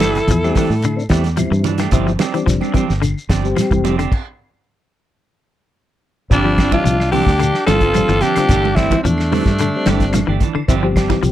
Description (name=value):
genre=afrobeat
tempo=110 BPM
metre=4/4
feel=straight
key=unclear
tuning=A4 = 438 Hz
part: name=breathy alto saxophone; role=melody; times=0.0-1.1, 6.3-10.4 s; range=D4 to A4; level=-18 LUFS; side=left 2 dB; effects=none
part: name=breathy trumpet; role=second line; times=0.0-1.1, 6.3-10.4 s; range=G3 to F4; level=-24 LUFS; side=right 5 dB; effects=none
part: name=clean electric guitar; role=arpeggios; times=0.0-11.3 s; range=D3 to G3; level=-22 LUFS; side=left 6 dB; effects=none
part: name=clean electric guitar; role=stabs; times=0.0-11.1 s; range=E3 to G4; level=-23 LUFS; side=right 10 dB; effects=slapback echo
part: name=fingered electric bass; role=bass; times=0.0-11.3 s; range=F1 to A2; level=-19 LUFS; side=equal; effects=none
part: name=warm soul drum kit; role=drums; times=0.0-11.3 s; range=crash cymbal, hi-hat, kick drum, snare drum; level=-19 LUFS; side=equal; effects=none
part: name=claves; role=percussion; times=0.0-11.1 s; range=none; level=-35 LUFS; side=left 1 dB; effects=none
part: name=congas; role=percussion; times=0.0-11.2 s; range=none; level=-24 LUFS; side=right 12 dB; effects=none
part: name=shekere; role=percussion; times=0.0-11.3 s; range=none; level=-25 LUFS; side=left 2 dB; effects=none
part: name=percussive tonewheel organ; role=accompaniment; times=0.4-11.3 s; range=G3 to G4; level=-21 LUFS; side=left 4 dB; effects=chorus vibrato, slow rotary speaker
room=little or no reverb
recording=dry, close 1970s-style studio recording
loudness=-13 LUFS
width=side -12 dB against mid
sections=0.0-6.3 A section; 6.3-11.3 B section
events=stop 4.1-6.3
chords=0.0 C69/G; 1.9 G7sus4; 4.1 N.C.; 6.3 G7sus4; 8.5 C69/G; 10.7 G7sus4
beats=0.28 0.83 1.38 | 1.93 2.48 3.03 3.57 | 4.12 4.67 5.22 5.77 | 6.31 6.86 7.41 7.96 | 8.50 9.05 9.60 10.14 | 10.69 11.24